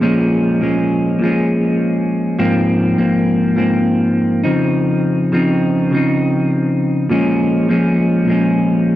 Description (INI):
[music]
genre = indie pop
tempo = 102 BPM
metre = 4/4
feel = swing 55% on 16ths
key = Bb minor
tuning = A4 = 440 Hz
[part]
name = clean electric guitar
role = solo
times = 0.0-9.0 s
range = Ab2 to Eb4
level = -13 LUFS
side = equal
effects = wide subtle chorus, vibrato effect, cassette tape
[sound]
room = moderate small room reverb, RT60 0.5 s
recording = home recording on cassette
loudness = -13 LUFS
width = side -14 dB against mid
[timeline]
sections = 0.0-9.0 A section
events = none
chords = 0.0 Bbm7; 2.4 Ab69; 4.4 Dbmaj9; 7.1 Bbm7